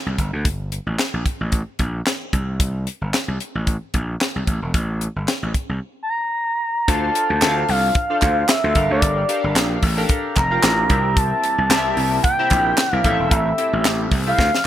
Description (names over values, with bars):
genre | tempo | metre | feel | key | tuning
early-eighties boogie funk | 112 BPM | 4/4 | swing 56% on 16ths | D minor | A4 = 440 Hz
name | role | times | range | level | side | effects
gritty slap bass | bass | 0.1-14.5 s | E1 to D2 | -22 LUFS | equal | overdrive
tight funk drum kit | drums | 0.2-14.7 s | handclaps, hi-hat, kick drum, snare drum | -20 LUFS | equal | none
expressive portamento lead | melody | 6.0-14.7 s | D5 to Bb5 | -20 LUFS | equal | chorus, ping-pong delay
chorused polysynth | accompaniment | 6.9-14.4 s | C4 to F5 | -24 LUFS | left 1 dB | none
group handclap | percussion | 7.4-14.0 s | none | -28 LUFS | right 8 dB | none
chorused pulse-width pad | sustained chords | 11.2-14.7 s | C3 to G4 | -32 LUFS | equal | none
room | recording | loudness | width
light reverb, small room ambience | bright 1980s-style digital production | -17 LUFS | side -11 dB against mid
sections
0.0-6.9 A section; 6.9-14.7 B section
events
drum fill 14.4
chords
0.2 Gmadd9; 2.3 C5; 4.5 N.C.; 6.9 Dm7; 8.8 Gm9; 10.9 C7; 13.0 Am7